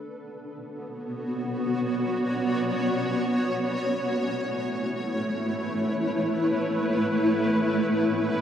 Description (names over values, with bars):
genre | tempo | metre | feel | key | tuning
ambient | free time | none | none | unclear | A4 = 438 Hz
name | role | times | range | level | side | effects
granular cloud pad | solo | 0.0-8.4 s | A3 to D5 | -24 LUFS | equal | built-in reverb, analog delay
room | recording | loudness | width
wet echo chamber reverb, RT60 2.1 s | echo-heavy mix | -24 LUFS | side -9 dB against mid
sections
0.0-8.4 A section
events
none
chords
0.0 Bm9; 3.3 A69